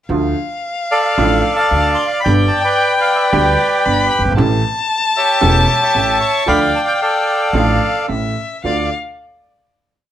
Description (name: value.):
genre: tango.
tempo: 113 BPM.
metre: 4/4.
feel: rubato.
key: D dorian.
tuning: A4 = 441 Hz.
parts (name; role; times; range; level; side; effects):
warm violin; second line; 0.1-8.9 s; E5 to B5; -18 LUFS; left 3 dB; none.
clear upright piano; accompaniment; 0.1-8.9 s; E1 to A4; -19 LUFS; right 3 dB; none.
upright bass; bass; 0.1-8.9 s; E1 to D2; -18 LUFS; equal; none.
bandoneon; melody; 0.9-8.9 s; G4 to C#6; -15 LUFS; right 1 dB; none.
room: moderate studio ambience, RT60 0.5 s.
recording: none.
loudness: -13 LUFS.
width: side -11 dB against mid.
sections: 0.1-8.6 A section; 8.6-10.1 final chord.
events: none.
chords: 0.1 Dm; 2.2 G; 4.4 A7; 6.5 Dm; 8.1 A5; 8.6 Dm.